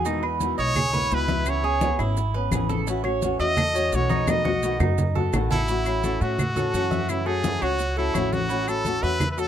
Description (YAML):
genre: latin, Cuban son and guajira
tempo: 170 BPM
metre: 4/4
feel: straight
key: unclear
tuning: A4 = 438 Hz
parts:
  - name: flamenco guitar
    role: accompaniment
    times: 0.0-9.5 s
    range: B2 to G#4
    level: -28 LUFS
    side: left 3 dB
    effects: none
  - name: Cuban tres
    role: arpeggios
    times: 0.0-9.5 s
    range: A3 to E5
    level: -29 LUFS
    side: right 7 dB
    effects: none
  - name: upright bass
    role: bass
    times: 0.0-9.5 s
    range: G#1 to A2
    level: -27 LUFS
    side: equal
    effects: none
  - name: congas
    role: percussion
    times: 0.1-9.5 s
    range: none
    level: -28 LUFS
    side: left 1 dB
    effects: none
  - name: maracas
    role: percussion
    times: 0.1-9.5 s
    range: none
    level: -39 LUFS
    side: right 8 dB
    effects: none
  - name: claves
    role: percussion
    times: 0.2-9.4 s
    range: none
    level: -34 LUFS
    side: left 7 dB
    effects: none
  - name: brilliant trumpet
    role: melody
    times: 0.6-9.5 s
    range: E4 to D#5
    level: -26 LUFS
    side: equal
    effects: none
room: light reverb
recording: close, detailed microphones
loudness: -21 LUFS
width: side -10 dB against mid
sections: 0.0-5.7 A section; 5.7-9.5 B section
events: trumpet solo 0.0-5.7; drum fill 4.3-5.7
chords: 0.1 Emaj7; 1.5 C#m7; 2.9 A6; 4.3 B7; 5.7 A6